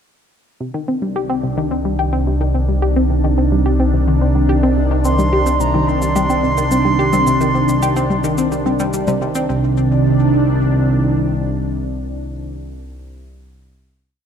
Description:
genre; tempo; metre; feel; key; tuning
ambient, sequencer-driven space music; 108 BPM; 4/4; straight; C minor; A4 = 440 Hz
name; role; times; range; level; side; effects
lush unison pad; sustained chords; 0.9-12.5 s; C3 to D4; -18 LUFS; right 1 dB; chorus, phaser
analog pluck; riff; 0.6-9.8 s; C3 to G4; -20 LUFS; left 1 dB; chorus, phaser, ping-pong delay
analog drone; bass; 1.6-11.1 s; C2; -19 LUFS; equal; chorus
concert flute; melody; 5.0-8.9 s; Bb5 to C6; -20 LUFS; right 2 dB; ping-pong delay
cabasa and congas; percussion; 5.0-9.5 s; none; -25 LUFS; left 4 dB; ping-pong delay
room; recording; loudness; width
moderate lush hall reverb, RT60 2.7 s; dark, warm production; -14 LUFS; side -8 dB against mid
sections
0.6-9.5 A section; 9.5-11.7 final chord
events
filter sweep on synth arpeggio sound 0.6-9.5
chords
0.6 Cmadd9

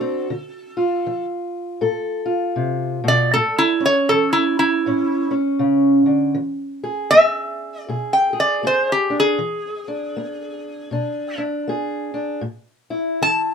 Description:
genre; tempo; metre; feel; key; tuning
acoustic country blues, solo or duo; 79 BPM; 4/4; swing 61% on 8ths; unclear; A4 = 440 Hz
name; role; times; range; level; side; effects
metal-body resonator slide guitar; melody; 0.0-13.5 s; E4 to A5; -16 LUFS; equal; none
fingerpicked steel-string acoustic guitar; accompaniment; 0.0-13.5 s; A2 to A4; -21 LUFS; equal; none
room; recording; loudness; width
moderate studio reverb, RT60 0.5 s; minimal, uncompressed stereo recording; -17 LUFS; side -7 dB against mid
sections
0.0-13.5 A section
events
none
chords
0.3 Dm7; 3.3 A; 6.4 E7; 12.4 A5

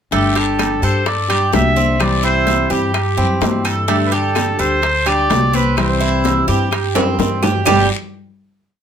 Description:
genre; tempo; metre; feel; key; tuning
latin, Cuban son and guajira; 127 BPM; 4/4; straight; unclear; A4 = 441 Hz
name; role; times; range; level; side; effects
warm trumpet; melody; 0.1-7.9 s; G4 to E5; -19 LUFS; right 1 dB; none
fingerpicked steel-string acoustic guitar; accompaniment; 0.1-7.9 s; G2 to G4; -21 LUFS; left 3 dB; none
Cuban tres; arpeggios; 0.1-7.9 s; G3 to A4; -20 LUFS; right 5 dB; none
upright bass; bass; 0.1-7.9 s; G1 to G2; -20 LUFS; equal; none
bongos; percussion; 0.1-7.8 s; none; -25 LUFS; left 8 dB; none
congas; percussion; 0.1-7.8 s; none; -25 LUFS; left 3 dB; none
guiro; percussion; 0.1-7.8 s; none; -30 LUFS; left 6 dB; none
timbales; percussion; 0.1-7.8 s; none; -24 LUFS; right 5 dB; none
claves; percussion; 0.6-7.8 s; none; -27 LUFS; left 6 dB; none
room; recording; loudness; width
moderate studio reverb, RT60 0.5 s; minimal, uncompressed stereo recording; -13 LUFS; side -8 dB against mid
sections
0.1-7.7 montuno (vamp); 7.7-8.8 final chord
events
drum fill 7.0-7.7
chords
0.1 Gsus2; 2.0 C; 3.9 Gsus2; 5.8 C; 7.7 G

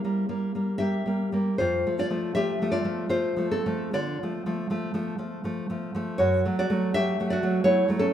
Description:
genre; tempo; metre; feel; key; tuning
romantic piece for solo classical guitar; 67-85 BPM; 3/4; rubato; unclear; A4 = 440 Hz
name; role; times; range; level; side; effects
nylon-string guitar; solo; 0.0-8.1 s; F2 to E5; -24 LUFS; equal; none
room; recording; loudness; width
moderate concert hall reverb, RT60 1.7 s; minimal, uncompressed stereo recording; -24 LUFS; side -10 dB against mid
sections
0.0-8.1 A section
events
none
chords
0.0 C7; 1.6 F; 3.9 Dm; 6.2 F#m7

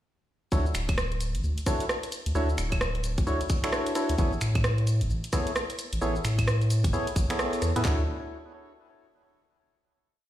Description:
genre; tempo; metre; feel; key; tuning
UK garage, two-step garage; 131 BPM; 4/4; swing 61% on 16ths; D lydian; A4 = 440 Hz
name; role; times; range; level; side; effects
percussive organ stab; stabs; 0.5-8.0 s; B3 to C#5; -31 LUFS; equal; chorus, ping-pong delay
saturated sub bass; bass; 0.5-8.1 s; D1 to A2; -27 LUFS; equal; none
garage drum kit; drums; 0.5-8.0 s; handclaps, kick drum; -27 LUFS; equal; overdrive
garage drum kit; drums; 0.5-7.8 s; claves, finger snaps, hi-hat, rim click, shaker; -32 LUFS; right 1 dB; overdrive
room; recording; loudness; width
light reverb, digital ambience; played on a big sound system in a bare room, stone room reverb; -25 LUFS; side -13 dB against mid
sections
0.5-7.8 drop; 7.8-9.7 final chord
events
drop 0.5-7.8; band accent 7.4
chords
0.5 Dmaj9; 4.2 Amaj9; 7.8 Dmaj9

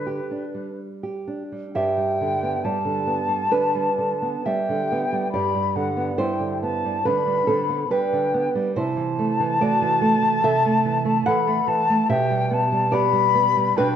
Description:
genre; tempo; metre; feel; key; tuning
romantic duo for flute and classical guitar; 60-74 BPM; 4/4; rubato; G major; A4 = 439 Hz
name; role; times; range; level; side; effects
concert flute; melody; 0.0-14.0 s; B4 to B5; -23 LUFS; left 4 dB; none
nylon-string guitar; accompaniment; 0.0-14.0 s; G2 to F#5; -22 LUFS; right 3 dB; none
room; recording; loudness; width
moderate scoring stage reverb, RT60 1.9 s; dark, warm production; -19 LUFS; side -9 dB against mid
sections
0.0-1.7 A section; 1.7-14.0 B section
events
none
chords
0.0 G; 8.8 Am/C; 12.1 G/B

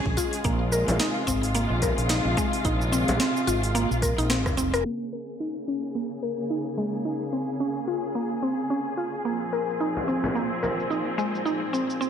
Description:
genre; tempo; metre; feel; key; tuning
organic downtempo; 109 BPM; 4/4; swing 58% on 16ths; Bb minor; A4 = 441 Hz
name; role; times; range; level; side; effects
muted studio string section; sustained chords; 0.0-12.1 s; Bb2 to Ab4; -30 LUFS; equal; sidechain pumping
mallet-like synth pluck; arpeggios; 0.0-12.1 s; Ab3 to Bb4; -27 LUFS; equal; chorus, ping-pong delay
fretless electric bass; bass; 0.1-4.8 s; F1 to Bb1; -27 LUFS; equal; tube saturation, sidechain pumping
electronic kick drum; drums; 0.1-4.7 s; none; -29 LUFS; equal; small room reverb
afro-pop drum kit; drums; 0.2-12.1 s; hi-hat, rim click, shaker, snare drum; -31 LUFS; right 1 dB; small room reverb
frame drum; percussion; 0.9-4.6, 10.0-10.8 s; none; -32 LUFS; left 1 dB; none
room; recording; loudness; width
moderate scoring stage reverb, RT60 2.0 s, digital ambience; low-pass filter; -24 LUFS; side -8 dB against mid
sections
0.0-4.8 A section; 4.8-12.1 B section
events
drum fill 4.3-4.8; filter sweep on synth pluck 4.8-12.1; filter sweep 4.8-12.1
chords
0.4 Fm; 4.8 Bbm7; 9.3 Fm/Bb

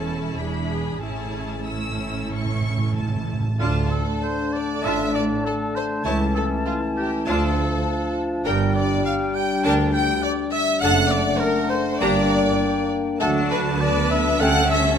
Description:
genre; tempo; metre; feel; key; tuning
quick classical-period movement for symphony orchestra; 90-103 BPM; 4/4; rubato; A major, D minor from 3.6 s; A4 = 435 Hz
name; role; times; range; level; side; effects
rich symphonic violin section; melody; 0.0-15.0 s; G5 to E6; -32 LUFS; equal; none
rich studio violin section; second line; 0.0-15.0 s; E4 to A5; -26 LUFS; left 2 dB; none
rich studio viola section; accompaniment; 0.0-15.0 s; B3 to B4; -28 LUFS; right 1 dB; none
rich studio double bass section; bass; 0.0-15.0 s; E1 to D2; -28 LUFS; right 4 dB; none
warm studio cello section; bass; 0.0-15.0 s; C#2 to D3; -28 LUFS; right 3 dB; none
timpani; percussion; 0.0-3.5 s; E2 to A2; -29 LUFS; right 1 dB; none
silver concert flute; second line; 3.6-14.7 s; F#5 to A5; -31 LUFS; left 4 dB; none
warm clarinet; second line; 3.6-14.6 s; C#4 to D4; -31 LUFS; left 2 dB; none
warm oboe; second line; 3.6-14.8 s; F4 to A5; -30 LUFS; right 1 dB; none
mellow bassoon; accompaniment; 3.6-14.6 s; D3 to Bb3; -29 LUFS; right 2 dB; none
dark French horn section; sustained chords; 3.6-15.0 s; F#3 to F4; -27 LUFS; left 6 dB; none
room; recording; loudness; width
moderate scoring stage reverb, RT60 1.6 s; none; -19 LUFS; side -8 dB against mid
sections
0.0-3.6 A section; 3.6-15.0 B section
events
timpani fill 1.0-3.6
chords
0.4 E7; 1.0 A; 3.6 Dm; 6.1 A/C#; 7.3 Dm; 8.5 Gm; 10.8 D/F#; 12.0 Gm; 13.2 D; 14.4 A7/D

